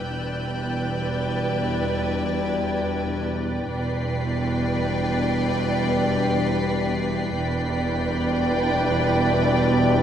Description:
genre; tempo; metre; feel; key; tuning
cinematic; free time; none; none; E minor; A4 = 439 Hz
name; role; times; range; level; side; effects
muted chamber violin section; melody; 0.0-10.0 s; G5; -30 LUFS; right 2 dB; none
muted studio violin section; second line; 0.0-10.0 s; D5; -31 LUFS; left 3 dB; none
muted chamber viola section; accompaniment; 0.0-10.0 s; B4; -32 LUFS; right 4 dB; none
clear trombone section; sustained chords; 0.0-10.0 s; B2 to E3; -32 LUFS; right 2 dB; none
dark French horn section; sustained chords; 0.0-10.0 s; G3 to D4; -29 LUFS; left 7 dB; none
evolving wavetable pad; sustained chords; 0.0-10.0 s; B4 to G5; -34 LUFS; equal; ensemble chorus, built-in reverb
muted chamber cello section; bass; 0.0-10.0 s; E2; -28 LUFS; right 2 dB; none
muted studio double bass section; bass; 0.0-10.0 s; E1; -28 LUFS; right 2 dB; none
muted chamber violin section; texture; 0.0-10.0 s; E6 to C7; -37 LUFS; left 2 dB; none
room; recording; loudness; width
wet scoring stage reverb, RT60 1.5 s; none; -21 LUFS; side -9 dB against mid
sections
0.0-10.0 A section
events
none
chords
0.0 Em7

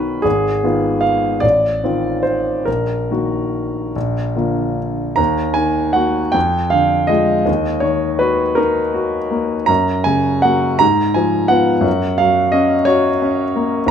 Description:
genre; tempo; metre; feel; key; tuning
classical, romantic character piece for solo piano; 46-59 BPM (dotted quarters); 6/8; rubato; Eb minor; A4 = 440 Hz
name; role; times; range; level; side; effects
clear grand piano; solo; 0.0-13.9 s; Ab1 to Bb5; -14 LUFS; equal; none
room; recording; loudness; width
moderate large studio reverb, RT60 1.1 s; close, detailed microphones; -14 LUFS; side -8 dB against mid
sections
0.0-5.2 A section; 5.2-13.9 B section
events
none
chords
0.2 Fm7b5/Ab; 1.4 F7/A; 2.7 Ebm/Bb; 4.0 Bb; 5.2 Ebm; 6.3 Ddim/F; 7.5 Ebm; 9.7 Gb; 10.8 Fdim/Ab; 11.9 Gb

